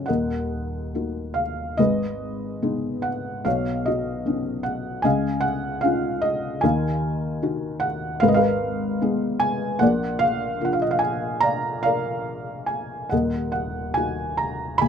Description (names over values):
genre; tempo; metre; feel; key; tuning
classical, lyrical solo piano; 69-77 BPM; 4/4; rubato; Eb minor; A4 = 440 Hz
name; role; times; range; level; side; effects
felt-muted upright piano; solo; 0.0-14.9 s; Eb1 to Cb6; -21 LUFS; equal; none
room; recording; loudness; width
light reverb; close, detailed microphones; -22 LUFS; side -7 dB against mid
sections
0.1-14.9 A section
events
none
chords
0.1 Ebm; 1.8 Abm; 3.5 Badd9; 5.0 Dbadd9; 6.6 Ebmadd9; 8.2 Abmadd9; 9.8 Bb; 13.1 Ebm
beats
| 0.09 0.95 1.79 2.63 | 3.46 4.27 5.05 5.84 | 6.64 7.43 8.23 9.02 | 9.81 10.61 11.42 12.27 | 13.12 13.97 14.81